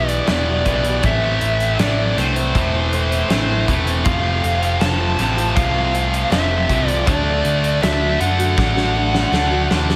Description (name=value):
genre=quiet-loud alternative rock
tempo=80 BPM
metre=4/4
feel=straight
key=unclear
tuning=A4 = 437 Hz
part: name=high-gain lead guitar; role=melody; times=0.0-9.7 s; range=C5 to A5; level=-24 LUFS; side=equal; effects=distortion, analog delay
part: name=picked steel-string acoustic guitar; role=arpeggios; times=0.0-10.0 s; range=E2 to F#4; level=-29 LUFS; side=equal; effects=slapback echo
part: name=high-gain distorted guitar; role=riff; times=0.0-10.0 s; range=E2 to D4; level=-23 LUFS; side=equal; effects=distortion
part: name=overdriven picked electric bass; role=bass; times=0.0-10.0 s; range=E1 to F#2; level=-24 LUFS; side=equal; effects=none
part: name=big rock drum kit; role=drums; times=0.1-10.0 s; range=hi-hat, kick drum, snare drum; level=-25 LUFS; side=equal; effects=none
room=moderate lush hall reverb, RT60 2.0 s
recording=big arena sound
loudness=-18 LUFS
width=mono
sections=0.0-10.0 A section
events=drum fill 8.6-10.0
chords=0.0 Em; 1.0 Am; 4.1 F; 7.1 D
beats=0.28 | 1.03 1.79 2.54 3.30 | 4.05 4.81 5.56 6.31 | 7.07 7.82 8.57 9.32